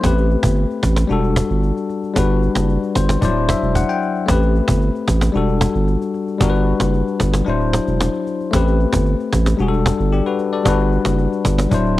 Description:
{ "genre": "afrobeats", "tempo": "113 BPM", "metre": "4/4", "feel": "straight", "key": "A dorian", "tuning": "A4 = 442 Hz", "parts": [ { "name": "bell-like tine electric piano", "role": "accompaniment", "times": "0.0-12.0 s", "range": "F3 to G5", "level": "-19 LUFS", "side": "left 5 dB", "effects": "cassette tape" }, { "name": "saturated sub bass", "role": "bass", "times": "0.0-12.0 s", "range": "D1 to A1", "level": "-18 LUFS", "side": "right 1 dB", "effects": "none" }, { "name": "cajon", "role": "drums", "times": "0.0-11.9 s", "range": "none", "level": "-20 LUFS", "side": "right 1 dB", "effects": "cassette tape" } ], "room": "small room ambience", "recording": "home recording on cassette", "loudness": "-15 LUFS", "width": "side -16 dB against mid", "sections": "0.0-8.5 A section; 8.5-12.0 B section", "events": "tine electric piano fill 2.7-4.3; break 7.5-8.5", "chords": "0.0 Am9; 1.1 Em11; 2.2 Gmaj7; 3.2 D9; 4.3 Am9; 5.3 Em11; 6.4 Gmaj7; 7.5 D9; 8.5 Am9; 9.6 Em11; 10.7 Gmaj7", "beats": "| 0.04 0.57 1.10 1.63 | 2.16 2.69 3.22 3.75 | 4.28 4.82 5.34 5.88 | 6.41 6.94 7.47 8.00 | 8.53 9.06 9.59 10.12 | 10.65 11.19 11.72" }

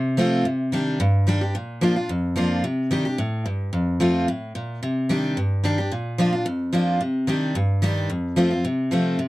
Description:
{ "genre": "bluegrass", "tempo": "220 BPM", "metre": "4/4", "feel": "straight", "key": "C dorian", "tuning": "A4 = 441 Hz", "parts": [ { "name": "picked steel-string acoustic guitar", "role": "solo", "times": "0.0-9.3 s", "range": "F2 to G4", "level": "-20 LUFS", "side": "equal", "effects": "none" } ], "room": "light reverb", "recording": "dry, close 1970s-style studio recording", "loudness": "-20 LUFS", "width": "side -18 dB against mid", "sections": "0.0-9.3 A section", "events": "none", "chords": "0.5 Cmadd9; 1.6 Bb; 2.6 Cmadd9; 3.7 F; 4.8 Cmadd9; 5.9 Bb; 7.0 Cmadd9; 8.1 F", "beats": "0.18 | 0.46 0.73 1.00 1.28 | 1.55 1.82 2.10 2.37 | 2.64 2.92 3.19 3.46 | 3.73 4.01 4.28 4.55 | 4.83 5.10 5.37 5.65 | 5.92 6.19 6.46 6.74 | 7.01 7.28 7.56 7.83 | 8.10 8.38 8.65 8.92 | 9.19" }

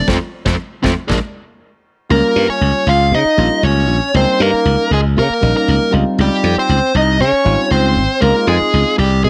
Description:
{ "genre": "electric jazz fusion", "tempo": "118 BPM", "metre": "4/4", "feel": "straight", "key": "unclear", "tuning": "A4 = 440 Hz", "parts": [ { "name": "dark smooth lead guitar", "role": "melody", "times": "0.0-9.3 s", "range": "F4 to F5", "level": "-19 LUFS", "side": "equal", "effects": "overdrive" }, { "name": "bell-like tine electric piano", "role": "accompaniment", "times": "0.0-9.0 s", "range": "F3 to F4", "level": "-23 LUFS", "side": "equal", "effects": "phaser" }, { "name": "glassy slap bass", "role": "bass", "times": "0.1-9.3 s", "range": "Ab1 to Db3", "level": "-17 LUFS", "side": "equal", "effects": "none" }, { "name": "modern studio drum kit", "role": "drums", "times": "0.1-1.2 s", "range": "kick drum, snare drum", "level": "-22 LUFS", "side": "equal", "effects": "none" }, { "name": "bright trombone", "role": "second line", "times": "2.1-9.3 s", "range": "G3 to F4", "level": "-21 LUFS", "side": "equal", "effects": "none" } ], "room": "light reverb, studio reverb", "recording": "none", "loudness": "-14 LUFS", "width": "mono", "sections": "0.0-2.1 A section; 2.1-9.3 B section", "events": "band accent 0.1-2.1; tine electric piano fill 1.3-2.1", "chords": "0.0 F; 1.1 N.C.; 2.1 Eb7; 5.9 Dbmaj9#11", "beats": "| 0.07 0.58 1.09 1.60 | 2.11 2.62 3.13 3.64 | 4.15 4.66 5.17 5.68 | 6.18 6.69 7.20 7.71 | 8.22 8.73 9.23" }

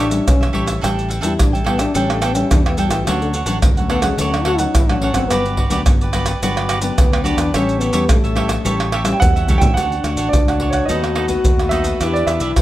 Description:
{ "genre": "samba and choro", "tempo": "107 BPM", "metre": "4/4", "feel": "straight", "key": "D major", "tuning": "A4 = 440 Hz", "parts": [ { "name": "breathy trombone", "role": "second line", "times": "0.0-12.6 s", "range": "D3 to F#4", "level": "-21 LUFS", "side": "left 3 dB", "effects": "none" }, { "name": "cavaquinho", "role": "accompaniment", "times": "0.0-12.5 s", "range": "D4 to G5", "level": "-24 LUFS", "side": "right 4 dB", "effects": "none" }, { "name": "nylon-string guitar", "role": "accompaniment", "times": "0.0-12.6 s", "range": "G2 to B4", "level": "-24 LUFS", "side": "left 4 dB", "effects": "none" }, { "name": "fingered electric bass", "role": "bass", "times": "0.0-12.6 s", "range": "G1 to E2", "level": "-23 LUFS", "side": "equal", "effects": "none" }, { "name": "maracas, pandeiro, surdo and tamborim", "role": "percussion", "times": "0.1-12.6 s", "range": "none", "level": "-18 LUFS", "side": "right 1 dB", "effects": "none" }, { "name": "warm grand piano", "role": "melody", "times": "9.1-12.6 s", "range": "C#5 to G5", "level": "-21 LUFS", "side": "right 4 dB", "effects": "plate reverb, analog delay" } ], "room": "light reverb", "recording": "none", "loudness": "-14 LUFS", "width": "side -14 dB against mid", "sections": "0.0-9.8 A section; 9.8-12.6 B section", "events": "trombone solo 0.0-9.8; drum fill 9.1-9.8", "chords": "0.0 A7; 0.8 A7sus4; 3.1 Dmaj7; 5.3 Gmaj7; 7.5 A7; 9.8 Dmaj7; 10.9 B7/D#; 12.0 Em7", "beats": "0.27 | 0.83 1.39 1.95 2.51 | 3.07 3.63 4.18 4.74 | 5.30 5.86 6.42 6.98 | 7.54 8.10 8.65 9.21 | 9.77 10.33 10.89 11.45 | 12.01 12.57" }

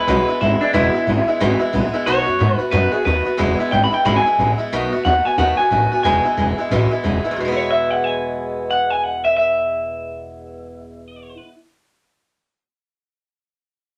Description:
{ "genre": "rockabilly", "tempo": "181 BPM", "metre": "4/4", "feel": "swing 61% on 8ths", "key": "E major", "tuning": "A4 = 440 Hz", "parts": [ { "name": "electric guitar through a small old amp", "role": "melody", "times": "0.0-11.5 s", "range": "D4 to B5", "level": "-20 LUFS", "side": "equal", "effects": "none" }, { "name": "picked swing-style acoustic guitar", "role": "accompaniment", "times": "0.0-11.5 s", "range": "E2 to F#4", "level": "-24 LUFS", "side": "equal", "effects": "none" }, { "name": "upright bass", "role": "bass", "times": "0.1-11.4 s", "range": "E1 to G#2", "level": "-23 LUFS", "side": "equal", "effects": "none" } ], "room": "moderate studio ambience, RT60 0.5 s", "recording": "none", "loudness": "-18 LUFS", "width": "mono", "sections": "0.0-4.7 A section; 4.7-7.4 B section; 7.4-10.0 C section", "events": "none", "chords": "0.0 E; 2.1 B7; 3.4 E; 4.7 B7; 6.0 E", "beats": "0.07 0.40 | 0.73 1.06 1.40 1.73 | 2.06 2.39 2.73 3.06 | 3.39 3.72 4.05 4.39 | 4.72 5.05 5.38 5.72 | 6.05 6.38 6.71 7.04 | 7.38 7.71 8.04 8.37 | 8.70 9.03 9.36 9.69" }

